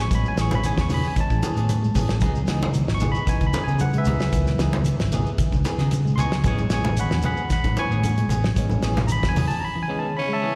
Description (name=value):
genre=afrobeat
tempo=114 BPM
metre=4/4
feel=swing 53% on 16ths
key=unclear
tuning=A4 = 440 Hz
part: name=barky tine electric piano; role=accompaniment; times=0.0-10.6 s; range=D#3 to C#6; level=-30 LUFS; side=equal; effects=slapback echo
part: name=fingered electric bass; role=bass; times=0.0-9.5 s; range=G#1 to C#3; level=-26 LUFS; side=equal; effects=none
part: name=electric guitar at the edge of break-up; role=arpeggios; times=0.1-10.5 s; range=C#3 to G#3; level=-32 LUFS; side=equal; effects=slapback echo
part: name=damped 70s drum kit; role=drums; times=0.1-9.5 s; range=hi-hat, kick drum, snare drum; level=-29 LUFS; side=equal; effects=none
part: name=shekere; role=percussion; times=0.1-9.6 s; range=none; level=-36 LUFS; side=equal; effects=none
part: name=clean electric guitar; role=stabs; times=0.4-10.6 s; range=E3 to G#4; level=-34 LUFS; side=equal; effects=harmonic tremolo, slapback echo
part: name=congas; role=percussion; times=0.5-9.5 s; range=none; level=-30 LUFS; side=equal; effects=slapback echo
part: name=breathy tenor saxophone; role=melody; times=10.2-10.6 s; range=C#4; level=-27 LUFS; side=equal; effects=none
part: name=bright trombone section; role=second line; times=10.2-10.5 s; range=C#3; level=-37 LUFS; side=equal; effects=none
part: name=clear trombone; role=second line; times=10.2-10.6 s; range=C#3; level=-37 LUFS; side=equal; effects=none
room=light reverb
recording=live gig heard through the venue's PA, recital hall reverb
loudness=-22 LUFS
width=mono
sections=0.0-10.6 A section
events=tine electric piano solo 0.0-10.6; break 9.6-10.6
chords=0.0 Amaj9; 2.2 C#m9; 6.4 Amaj9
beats=| 0.10 0.63 1.16 1.69 | 2.22 2.74 3.27 3.80 | 4.33 4.86 5.39 5.92 | 6.45 6.97 7.50 8.03 | 8.56 9.09 9.62 10.15